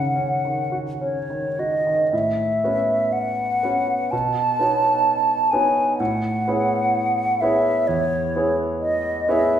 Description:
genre	classical, impressionist duo for flute and grand piano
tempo	52-66 BPM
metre	4/4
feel	rubato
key	A lydian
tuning	A4 = 439 Hz
part	hollow concert flute	melody	0.0-9.6 s	C#5 to A5	-20 LUFS	equal	none
part	clear concert grand piano	accompaniment	0.0-9.6 s	E2 to C#5	-24 LUFS	right 1 dB	none
room	wet recital hall reverb, RT60 1.3 s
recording	recorded in a church or concert hall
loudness	-19 LUFS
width	side -9 dB against mid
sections	0.0-2.1 A section; 2.1-9.6 B section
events	none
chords	0.0 Gb5; 2.1 A69; 4.1 B9; 6.0 Amaj9

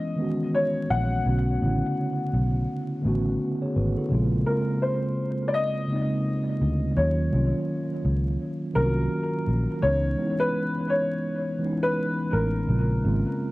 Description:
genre	lo-fi hip hop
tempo	84 BPM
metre	4/4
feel	swing 60% on 16ths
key	Bb minor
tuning	A4 = 438 Hz
part	dark upright piano	melody	0.0-13.5 s	Bb4 to Gb5	-28 LUFS	left 1 dB	low-pass filter, tape echo
part	mellow tine electric piano	accompaniment	0.0-13.5 s	C#3 to C#5	-26 LUFS	equal	medium stereo tremolo, low-pass filter, tape echo
part	vintage muted fingered electric bass	bass	0.9-13.2 s	Ab1 to Eb2	-24 LUFS	equal	none
room	light reverb, small room ambience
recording	echo-heavy mix, vinyl crackle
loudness	-23 LUFS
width	side -19 dB against mid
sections	0.0-13.5 A section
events	none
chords	0.0 Dbm9; 1.3 Bm9; 4.1 Bbm9; 7.0 Ebm9; 9.8 Dbm9; 12.7 Bbm9

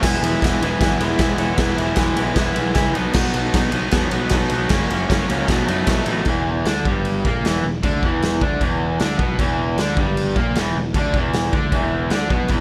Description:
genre	garage rock duo or trio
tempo	154 BPM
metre	4/4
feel	straight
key	E lydian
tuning	A4 = 438 Hz
part	combo organ	sustained chords	0.0-6.3, 12.5-12.6 s	C#4 to C#5	-32 LUFS	equal	none
part	raw garage guitar	riff	0.0-12.6 s	E2 to E4	-23 LUFS	equal	overdrive
part	fuzz picked electric bass	bass	0.0-12.6 s	E1 to F#2	-27 LUFS	equal	overdrive
part	raw garage drum kit	drums	0.0-12.6 s	crash cymbal, kick drum, ride cymbal, snare drum	-23 LUFS	equal	none
room	little or no reverb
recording	none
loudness	-19 LUFS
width	mono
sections	0.0-6.3 A section; 6.3-12.6 B section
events	none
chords	0.0 E; 3.0 B; 4.7 F#; 5.5 B7; 6.3 E5

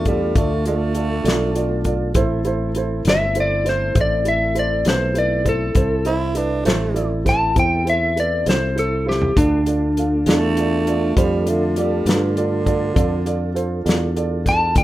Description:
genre	slow blues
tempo	67 BPM (dotted quarters)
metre	12/8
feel	straight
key	A minor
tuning	A4 = 445 Hz
part	growling tenor saxophone	second line	0.0-13.5 s	D3 to E4	-24 LUFS	right 3 dB	plate reverb
part	mellow tonewheel organ	sustained chords	0.0-14.8 s	A3 to A4	-27 LUFS	equal	slow rotary speaker, plate reverb
part	fretless electric bass	bass	0.0-14.8 s	G1 to G2	-23 LUFS	left 1 dB	none
part	dark upright piano	accompaniment	0.1-14.8 s	E4 to F5	-25 LUFS	right 4 dB	plate reverb
part	natural country drum kit	drums	0.1-14.8 s	hi-hat, kick drum, snare drum, toms	-20 LUFS	left 1 dB	none
part	electric slide guitar	melody	3.1-14.8 s	D4 to A5	-19 LUFS	left 1 dB	plate reverb
room	moderate studio reverb, RT60 0.6 s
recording	rough home demo mix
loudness	-16 LUFS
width	side -15 dB against mid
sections	0.0-14.8 A section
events	drum fill 9.1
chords	0.0 Dm; 2.2 Am; 9.4 Dm

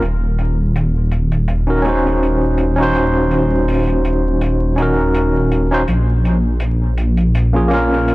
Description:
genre	trip hop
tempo	82 BPM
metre	4/4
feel	swing 55% on 16ths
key	Eb dorian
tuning	A4 = 439 Hz
part	dark detuned saw bass	bass	0.0-8.1 s	Eb1 to Bb1	-16 LUFS	equal	none
part	crunchy breakbeat drum kit	drums	0.0-8.1 s	hi-hat, snare drum	-30 LUFS	equal	low-pass filter on hats, soft clipping on snare, low-pass filter on snare, low-pass filter on room
part	overdriven tine electric piano	accompaniment	1.7-8.1 s	Bb3 to C5	-16 LUFS	equal	fast tremolo, harmonic tremolo, tape echo
room	small room ambience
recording	blown-out, overdriven recording, vinyl crackle, overdrive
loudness	-13 LUFS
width	side -20 dB against mid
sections	0.0-8.1 A section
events	none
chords	0.0 Ebm7; 5.9 Bbm

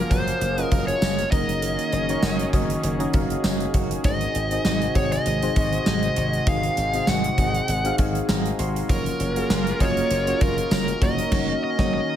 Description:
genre	1980s-style pop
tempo	99 BPM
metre	4/4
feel	swing 55% on 16ths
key	unclear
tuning	A4 = 440 Hz
part	dark smooth lead guitar	melody	0.0-12.2 s	Bb4 to Gb5	-26 LUFS	equal	overdrive, digital delay
part	soft electric-piano-like synth keys	accompaniment	0.0-12.2 s	Ab2 to C6	-28 LUFS	left 2 dB	chorus
part	phased analog pad	sustained chords	0.0-12.2 s	C3 to Bb4	-31 LUFS	equal	phaser, chorus
part	direct-recorded clean electric guitar	riff	0.0-11.8 s	Eb3 to Gb4	-33 LUFS	right 5 dB	lush chorus, digital delay
part	dry thumbed slap bass	bass	0.0-12.0 s	Gb1 to Ab1	-28 LUFS	equal	none
part	gated 80s drum kit	drums	0.1-11.9 s	crash cymbal, hi-hat, kick drum, snare drum, tambourine	-24 LUFS	equal	gated reverb
room	light reverb, studio reverb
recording	none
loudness	-20 LUFS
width	side -10 dB against mid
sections	0.0-12.2 A section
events	synth keys fill 7.7-8.9; band accent 11.3-12.2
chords	0.0 Gbmaj7; 4.0 Ab7; 8.9 Gbmaj7; 11.0 Ebm7/Gb

